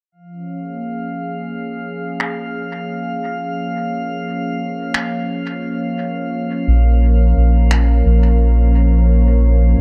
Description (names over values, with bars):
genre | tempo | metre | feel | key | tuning
ambient dub | 87 BPM | 4/4 | straight | Bb minor | A4 = 440 Hz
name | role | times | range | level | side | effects
warm analog pad | sustained chords | 0.1-9.8 s | F3 to Db5 | -25 LUFS | equal | subtle chorus
drifting glass-harmonics texture | texture | 0.4-9.8 s | F5 | -31 LUFS | equal | chorus, built-in reverb
finger snaps | drums | 2.2-7.9 s | none | -25 LUFS | equal | low-pass filter on snare, low-pass filter on room, dub echo
soft dub sub bass | bass | 6.7-9.8 s | Bb1 to Db2 | -14 LUFS | equal | none
room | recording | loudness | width
small room ambience | dark, warm production | -17 LUFS | mono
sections
0.1-9.8 A section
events
filter sweep on analog synth pad 0.1-9.8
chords
0.1 Bbm7